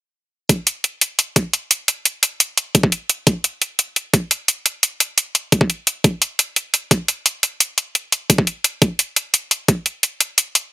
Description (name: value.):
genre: dark technical drum and bass.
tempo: 173 BPM.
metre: 4/4.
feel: straight.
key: none.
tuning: none.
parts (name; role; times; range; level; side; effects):
electronic hi-hat; drums; 0.5-10.6 s; none; -15 LUFS; equal; overdrive.
electronic kick drum; drums; 0.5-9.8 s; none; -14 LUFS; equal; overdrive, high-pass filter on kick.
room: little or no reverb.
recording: none.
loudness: -16 LUFS.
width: side -14 dB against mid.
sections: 0.5-10.7 A section.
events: none.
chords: none.